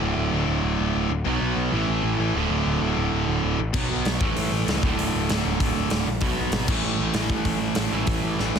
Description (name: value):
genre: punk rock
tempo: 194 BPM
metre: 4/4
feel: straight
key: D major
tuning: A4 = 440 Hz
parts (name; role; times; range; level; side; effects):
- distorted electric guitar; riff; 0.0-8.6 s; D2 to B3; -26 LUFS; right 10 dB; distortion
- tight distorted guitar; riff; 0.0-8.6 s; D2 to B3; -28 LUFS; left 14 dB; distortion
- fuzz picked electric bass; bass; 0.0-8.6 s; D1 to C#2; -27 LUFS; left 1 dB; overdrive
- big rock drum kit; drums; 3.7-8.6 s; crash cymbal, hi-hat, kick drum, snare drum; -26 LUFS; left 1 dB; none
room: little or no reverb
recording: dense, heavily limited modern master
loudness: -21 LUFS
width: side -7 dB against mid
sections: 0.0-8.6 A section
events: half time 0.0-8.6; drum fill 8.4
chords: 0.0 D5; 1.3 B5; 1.7 A5; 2.3 D5; 3.7 B5; 4.2 A; 4.8 D5; 6.2 B5; 6.7 A5